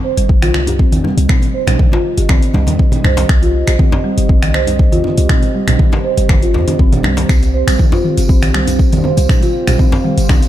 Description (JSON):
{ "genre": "afro house", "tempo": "120 BPM", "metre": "4/4", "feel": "straight", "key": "C minor", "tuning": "A4 = 440 Hz", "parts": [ { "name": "dark analog pad", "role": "sustained chords", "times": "0.0-10.5 s", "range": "C4 to F5", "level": "-23 LUFS", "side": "right 3 dB", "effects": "chorus, phaser, sidechain pumping" }, { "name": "folk marimba with soft mallets", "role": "arpeggios", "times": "0.0-10.4 s", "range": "G3 to C5", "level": "-18 LUFS", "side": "right 1 dB", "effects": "sidechain pumping, ping-pong delay" }, { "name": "warm 808-style bass", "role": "bass", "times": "0.2-10.4 s", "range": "G1 to F2", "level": "-15 LUFS", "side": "equal", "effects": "sidechain pumping" }, { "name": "afro-pop drum kit", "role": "drums", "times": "0.2-10.5 s", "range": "finger snaps, hi-hat, toms", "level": "-22 LUFS", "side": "left 2 dB", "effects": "overdrive" }, { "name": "congas", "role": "percussion", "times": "0.2-10.4 s", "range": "none", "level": "-21 LUFS", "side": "right 2 dB", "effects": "none" }, { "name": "electronic kick drum", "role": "drums", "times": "0.3-10.4 s", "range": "none", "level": "-12 LUFS", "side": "equal", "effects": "overdrive" }, { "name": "djembe", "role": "percussion", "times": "0.7-10.4 s", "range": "none", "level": "-23 LUFS", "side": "left 2 dB", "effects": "none" }, { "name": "tambourine", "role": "percussion", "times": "7.3-10.5 s", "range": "none", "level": "-32 LUFS", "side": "right 3 dB", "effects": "none" } ], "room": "small room ambience", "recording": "dark, warm production", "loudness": "-10 LUFS", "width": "side -12 dB against mid", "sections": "0.0-10.5 A section", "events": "none", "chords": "0.0 Cm", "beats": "0.29 0.79 | 1.29 1.79 2.29 2.79 | 3.29 3.79 4.29 4.79 | 5.29 5.79 6.29 6.79 | 7.29 7.79 8.29 8.79 | 9.29 9.79 10.29" }